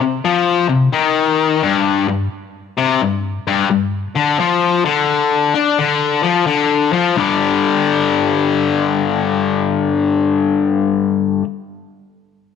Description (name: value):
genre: rock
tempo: 87 BPM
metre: 4/4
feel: swing 66% on 8ths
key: unclear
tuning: A4 = 440 Hz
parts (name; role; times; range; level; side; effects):
- overdriven electric guitar; solo; 0.0-11.4 s; G2 to D4; -14 LUFS; left 6 dB; none
room: light reverb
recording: none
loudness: -14 LUFS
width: side -6 dB against mid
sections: 0.0-7.2 A section; 7.2-9.9 B section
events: none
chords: 0.0 Cmadd11; 1.6 G5; 4.4 Dm; 7.2 G5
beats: 0.23 0.93 | 1.62 2.31 3.01 3.70 | 4.39 5.09 5.78 6.47 | 7.16 7.85 8.54 9.23